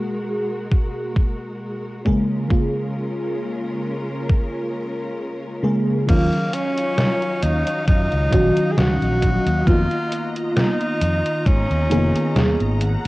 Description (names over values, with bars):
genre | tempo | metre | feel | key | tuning
vaporwave | 67 BPM | 4/4 | swing 54% on 16ths | unclear | A4 = 439 Hz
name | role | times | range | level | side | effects
FM electric piano with soft pad layer | accompaniment | 0.0-12.8 s | B2 to G#4 | -22 LUFS | equal | tremolo, analog chorus, cassette tape, tape echo
bright studio string section | sustained chords | 0.0-13.1 s | F#3 to A#5 | -30 LUFS | equal | low-pass filter
electronic kick drum | drums | 0.7-11.7 s | none | -18 LUFS | equal | cassette tape
breathy tenor saxophone | melody | 6.1-12.8 s | A#3 to G#4 | -24 LUFS | equal | cassette tape, tape echo
fretless electric bass | bass | 6.1-13.1 s | E#1 to G#2 | -21 LUFS | equal | none
detuned 8-bit digital drum machine | drums | 6.1-13.1 s | crash cymbal, hi-hat, snare drum | -23 LUFS | equal | cassette tape
room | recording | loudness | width
light reverb, digital ambience | home recording on cassette | -18 LUFS | side -19 dB against mid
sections
0.0-6.1 A section; 6.1-13.1 B section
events
none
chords
0.0 G#m9; 2.1 A#m7; 6.1 D#m9; 9.7 C#13/E#